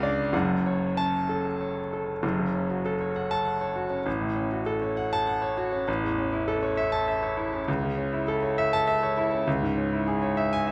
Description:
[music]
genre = classical, virtuoso piano study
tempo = 100 BPM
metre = 3/4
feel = rubato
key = F# minor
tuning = A4 = 436 Hz
[part]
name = clear concert grand piano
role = solo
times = 0.0-10.7 s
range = F#1 to A5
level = -27 LUFS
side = equal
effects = none
[sound]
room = moderate recital hall reverb, RT60 1.5 s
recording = none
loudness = -27 LUFS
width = mono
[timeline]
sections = 0.0-2.2 A section; 2.2-10.7 B section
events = none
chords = 0.3 F#m; 4.1 F#m/A; 5.9 A; 7.7 A/C#; 9.5 C#m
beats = | 0.34 0.97 1.60 | 2.23 2.85 3.46 | 4.06 4.67 5.27 | 5.88 6.48 7.07 | 7.67 8.27 8.87 | 9.47 10.07 10.67

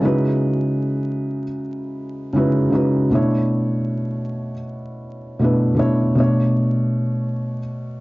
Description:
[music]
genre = hip hop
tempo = 78 BPM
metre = 4/4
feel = swing 56% on 16ths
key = B minor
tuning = A4 = 439 Hz
[part]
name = felt-muted upright piano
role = solo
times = 0.0-8.0 s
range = B2 to C#5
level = -18 LUFS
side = equal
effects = cassette tape
[sound]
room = wet studio ambience, RT60 0.5 s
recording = vinyl crackle, nothing above 7.5 kHz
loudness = -18 LUFS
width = side -20 dB against mid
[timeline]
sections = 0.0-6.2 A section; 6.2-8.0 B section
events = none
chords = 0.0 C#m11; 3.1 Bm11; 6.2 Bm9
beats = | 0.03 0.80 1.57 2.34 | 3.10 3.87 4.64 5.41 | 6.18 6.95 7.72

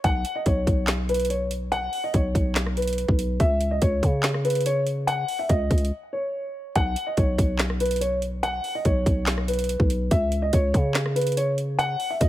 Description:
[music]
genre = hip hop, trap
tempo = 143 BPM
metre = 4/4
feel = half-time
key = unclear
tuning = A4 = 440 Hz
[part]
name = dark concert grand piano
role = melody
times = 0.0-12.3 s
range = B4 to F#5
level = -26 LUFS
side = equal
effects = none
[part]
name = growling 808-style bass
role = bass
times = 0.0-12.3 s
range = B1 to C#3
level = -26 LUFS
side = equal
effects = none
[part]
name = trap drum kit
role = drums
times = 0.0-12.3 s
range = handclaps, hi-hat, kick drum, rim click, snare drum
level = -24 LUFS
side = equal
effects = none
[sound]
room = digital ambience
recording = none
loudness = -21 LUFS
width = side -14 dB against mid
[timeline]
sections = 0.0-12.3 A section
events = break 5.9-6.8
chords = 0.0 Bsus2; 3.4 N.C.; 6.8 Bsus2; 10.1 C#5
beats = | 0.04 0.46 0.88 1.30 | 1.72 2.14 2.56 2.98 | 3.40 3.82 4.24 4.66 | 5.08 5.50 5.92 6.34 | 6.76 7.18 7.59 8.02 | 8.43 8.85 9.27 9.69 | 10.11 10.53 10.95 11.37 | 11.79 12.21

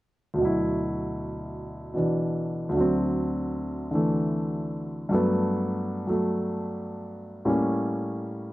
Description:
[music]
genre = solo jazz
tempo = 102 BPM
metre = 4/4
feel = swing 66% on 8ths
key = D major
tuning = A4 = 441 Hz
[part]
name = warm grand piano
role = solo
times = 0.3-8.5 s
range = D2 to E4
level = -25 LUFS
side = equal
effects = none
[sound]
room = light reverb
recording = close, detailed microphones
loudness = -25 LUFS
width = side -17 dB against mid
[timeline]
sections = 0.4-8.5 A section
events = none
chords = 0.4 D69; 2.8 D7; 5.1 Gmaj9; 7.5 A7b9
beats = | 0.39 0.98 1.57 2.16 | 2.75 3.34 3.93 4.52 | 5.11 5.70 6.29 6.87 | 7.46 8.05

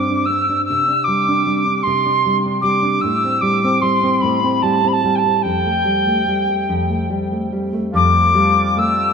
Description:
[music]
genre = celtic folk, Celtic slow air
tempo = 48-52 BPM (dotted quarters)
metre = 6/8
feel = rubato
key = unclear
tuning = A4 = 441 Hz
[part]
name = wooden whistle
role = melody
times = 0.0-9.1 s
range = G5 to E6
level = -16 LUFS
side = equal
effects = none
[part]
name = nylon-string guitar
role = accompaniment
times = 0.0-9.1 s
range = F2 to D4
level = -19 LUFS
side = equal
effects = none
[part]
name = mellow accordion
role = sustained chords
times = 7.9-9.1 s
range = G3 to A4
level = -28 LUFS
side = right 1 dB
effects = none
[sound]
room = moderate lush hall reverb, RT60 2.7 s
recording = rough home demo mix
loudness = -14 LUFS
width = side -6 dB against mid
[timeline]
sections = 0.0-7.9 A section; 7.9-9.1 B section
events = none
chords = 0.0 Gsus4; 3.0 Am7; 5.4 Fadd9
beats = | 0.69 1.86 | 3.04 4.24 | 5.45 6.68 | 7.94

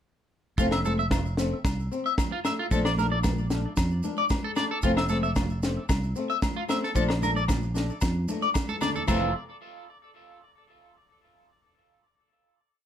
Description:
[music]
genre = highlife guitar band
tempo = 113 BPM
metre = 4/4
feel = straight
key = F major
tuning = A4 = 440 Hz
[part]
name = flamenco guitar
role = accompaniment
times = 0.6-9.3 s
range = E3 to D4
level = -30 LUFS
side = left 4 dB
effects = none
[part]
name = electric guitar at the edge of break-up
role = arpeggios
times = 0.6-9.3 s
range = F4 to E5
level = -30 LUFS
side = equal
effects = phaser, tape echo
[part]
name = fingered electric bass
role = bass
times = 0.6-9.3 s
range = F1 to F2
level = -29 LUFS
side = right 1 dB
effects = none
[part]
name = tight funk drum kit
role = drums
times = 0.6-9.2 s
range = crash cymbal, kick drum, snare drum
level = -28 LUFS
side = equal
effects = none
[part]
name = congas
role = percussion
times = 0.6-9.3 s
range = none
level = -35 LUFS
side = equal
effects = none
[part]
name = maracas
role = percussion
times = 0.6-9.3 s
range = none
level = -44 LUFS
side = right 6 dB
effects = none
[part]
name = agogo bells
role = percussion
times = 0.7-9.2 s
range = none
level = -38 LUFS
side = left 3 dB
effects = none
[sound]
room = moderate small room reverb, RT60 0.6 s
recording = none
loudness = -24 LUFS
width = side -10 dB against mid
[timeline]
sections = 0.6-9.1 A section; 9.1-11.2 final chord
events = drum fill 8.6-9.1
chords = 0.6 Fmaj7; 2.7 Bbmaj7; 4.8 Fmaj7; 7.0 Bbmaj7; 9.1 Fmaj7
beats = | 0.59 1.12 1.65 2.18 | 2.71 3.25 3.78 4.31 | 4.84 5.37 5.90 6.43 | 6.96 7.49 8.02 8.55 | 9.08

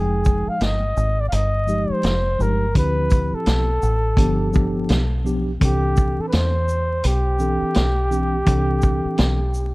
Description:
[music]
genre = hip hop, jazz-hop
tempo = 84 BPM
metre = 4/4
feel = swing 60% on 16ths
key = C major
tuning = A4 = 440 Hz
[part]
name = breathy flugelhorn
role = melody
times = 0.0-9.7 s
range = G4 to F5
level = -24 LUFS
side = equal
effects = none
[part]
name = mellow tine electric piano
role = accompaniment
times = 0.0-9.4 s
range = E3 to G5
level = -25 LUFS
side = equal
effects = medium stereo tremolo
[part]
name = deep dub fingered electric bass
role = bass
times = 0.0-9.7 s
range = F1 to E2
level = -21 LUFS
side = equal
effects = none
[part]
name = vintage drum kit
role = drums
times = 0.2-9.7 s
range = hi-hat, kick drum, shaker, snare drum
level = -21 LUFS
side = equal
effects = none
[sound]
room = small room ambience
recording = dark, warm production, vinyl crackle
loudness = -17 LUFS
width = side -22 dB against mid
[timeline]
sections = 0.0-9.7 A section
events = none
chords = 0.0 Fm9; 2.8 Dm11; 4.2 G7; 5.6 C69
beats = 0.61 1.33 2.04 | 2.76 3.47 4.18 4.90 | 5.61 6.33 7.04 7.76 | 8.47 9.19

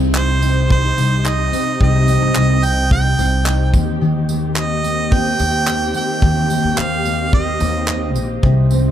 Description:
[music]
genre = acoustic pop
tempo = 109 BPM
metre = 4/4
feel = straight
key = unclear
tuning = A4 = 439 Hz
[part]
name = fingerpicked steel-string acoustic guitar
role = accompaniment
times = 0.0-8.9 s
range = C3 to Eb4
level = -19 LUFS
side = left 2 dB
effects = double-tracked left and right, dub echo
[part]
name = warm studio string section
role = sustained chords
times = 0.0-8.9 s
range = C3 to G4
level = -28 LUFS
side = left 2 dB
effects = none
[part]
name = upright bass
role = bass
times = 0.0-8.9 s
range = Bb1 to Eb2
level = -18 LUFS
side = equal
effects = none
[part]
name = modern studio drum kit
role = drums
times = 0.1-8.8 s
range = handclaps, kick drum, tambourine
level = -19 LUFS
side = equal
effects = none
[part]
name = clear harmonica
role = melody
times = 0.2-8.1 s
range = C5 to G5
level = -20 LUFS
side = right 4 dB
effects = dub echo
[sound]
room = small room reverb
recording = echo-heavy mix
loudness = -14 LUFS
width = side -10 dB against mid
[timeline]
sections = 0.0-8.9 A section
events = none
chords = 0.0 Cm; 3.7 Eb6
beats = 0.15 0.70 1.25 | 1.80 2.36 2.91 3.46 | 4.01 4.57 5.12 5.67 | 6.22 6.78 7.33 7.88 | 8.43

